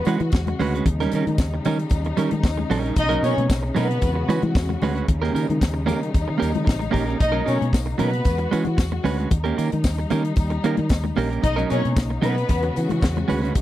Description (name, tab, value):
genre	disco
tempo	113 BPM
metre	4/4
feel	straight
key	unclear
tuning	A4 = 439 Hz
part	warm studio violin section	second line	0.0-12.7 s	B3 to D#5	-25 LUFS	left 2 dB	none
part	warm studio string section	sustained chords	0.0-13.6 s	C#3 to F#4	-29 LUFS	left 3 dB	none
part	clean electric guitar	accompaniment	0.1-13.6 s	F#3 to B4	-24 LUFS	right 6 dB	none
part	fingered electric bass	bass	0.1-13.6 s	A1 to E3	-24 LUFS	equal	none
part	tight funk drum kit	drums	0.1-13.6 s	hi-hat, kick drum, snare drum	-20 LUFS	equal	none
part	tambourine	percussion	0.1-13.4 s	none	-44 LUFS	left 16 dB	none
part	congas	percussion	0.2-13.6 s	none	-30 LUFS	left 6 dB	none
room	little or no reverb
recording	dry, close 1970s-style studio recording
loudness	-19 LUFS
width	side -13 dB against mid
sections	0.0-13.6 A section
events	none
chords	0.0 E69; 0.9 D#7; 3.0 Bmaj9; 4.0 E69; 5.1 D#7; 7.2 Bmaj9; 8.3 E69; 9.3 D#7; 11.4 Bmaj9; 12.5 E69